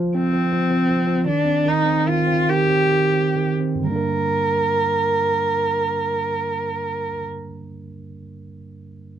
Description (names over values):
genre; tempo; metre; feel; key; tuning
acoustic folk-pop ballad; 40-57 BPM (dotted quarters); 6/8; straight; G minor; A4 = 440 Hz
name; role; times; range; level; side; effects
overdriven tine electric piano; accompaniment; 0.0-9.2 s; G2 to Bb4; -23 LUFS; right 2 dB; none
warm cello; melody; 0.2-7.2 s; C4 to Bb4; -20 LUFS; right 1 dB; none
room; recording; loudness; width
little or no reverb; close, detailed microphones; -18 LUFS; side -10 dB against mid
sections
0.0-3.9 A section; 3.9-9.2 B section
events
slowing down 0.0-3.9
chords
0.0 F5; 1.3 Cm/Eb; 3.9 Gm